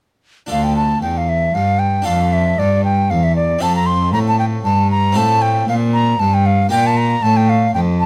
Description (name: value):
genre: classical, baroque-style sonata movement with continuo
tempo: 116 BPM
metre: 3/4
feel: straight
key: D minor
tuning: A4 = 443 Hz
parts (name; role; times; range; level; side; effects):
- bright baroque flute; melody; 0.5-8.1 s; D5 to C6; -19 LUFS; equal; none
- harpsichord; accompaniment; 0.5-8.1 s; D2 to D5; -27 LUFS; equal; none
- rich cello; bass; 0.5-8.1 s; D2 to Bb2; -19 LUFS; equal; none
room: little or no reverb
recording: close, detailed microphones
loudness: -16 LUFS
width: mono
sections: 0.5-8.1 A section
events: none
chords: 0.5 Dm; 2.1 Dm/F; 3.6 F; 5.2 F/A; 6.7 Bb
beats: | 0.50 1.02 1.55 | 2.07 2.59 3.11 | 3.63 4.14 4.66 | 5.18 5.70 6.21 | 6.72 7.24 7.75